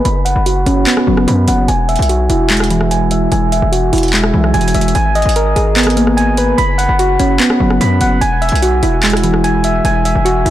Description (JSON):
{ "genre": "hip hop, trap", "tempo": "147 BPM", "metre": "4/4", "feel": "half-time", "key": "unclear", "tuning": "A4 = 440 Hz", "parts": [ { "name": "soft electric-piano-like synth keys", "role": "arpeggios", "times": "0.0-10.5 s", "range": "E3 to B5", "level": "-13 LUFS", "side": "right 1 dB", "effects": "chorus, low-pass filter, ping-pong delay" }, { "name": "distorted 808-style bass", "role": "bass", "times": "0.1-10.5 s", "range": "E1 to F#2", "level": "-15 LUFS", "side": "equal", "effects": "distortion" }, { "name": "trap drum kit", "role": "drums", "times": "0.1-10.5 s", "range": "handclaps, hi-hat, rim click", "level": "-19 LUFS", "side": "equal", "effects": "none" } ], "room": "light reverb", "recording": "blown-out, overdriven recording, overdrive", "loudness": "-10 LUFS", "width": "side -13 dB against mid", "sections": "0.0-10.5 A section", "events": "filter sweep on synth keys 0.0-4.9", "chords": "0.1 F#sus4; 1.7 Eadd9; 4.9 G#madd9; 6.6 F#sus4; 8.2 Eadd9" }